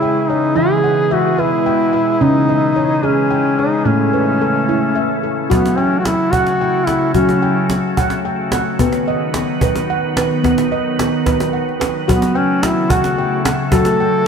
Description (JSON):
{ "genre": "world meditative, meditative tuned percussion", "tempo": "73 BPM (dotted quarters)", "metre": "6/8", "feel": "straight", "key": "unclear", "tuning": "A4 = 439 Hz", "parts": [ { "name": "warm duduk", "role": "melody", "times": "0.0-7.7, 12.1-14.3 s", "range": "B3 to A4", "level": "-17 LUFS", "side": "equal", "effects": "ping-pong delay" }, { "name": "soft additive organ-like pad", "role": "sustained chords", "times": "0.0-14.3 s", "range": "B2 to B3", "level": "-20 LUFS", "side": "left 1 dB", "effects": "ensemble chorus, built-in reverb" }, { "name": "handpan", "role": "arpeggios", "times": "0.0-14.3 s", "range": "A2 to G5", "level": "-18 LUFS", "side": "equal", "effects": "ping-pong delay" }, { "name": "cajon", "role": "percussion", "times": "5.5-14.1 s", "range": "none", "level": "-20 LUFS", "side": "right 1 dB", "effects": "none" } ], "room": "wet scoring stage reverb, RT60 1.6 s", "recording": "none", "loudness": "-13 LUFS", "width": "side -6 dB against mid", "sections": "0.0-5.5 A section; 5.5-14.3 B section", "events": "none", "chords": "0.0 C#m; 0.6 E; 2.2 C#m; 3.9 A; 5.5 F#m; 8.8 B; 12.1 F#m" }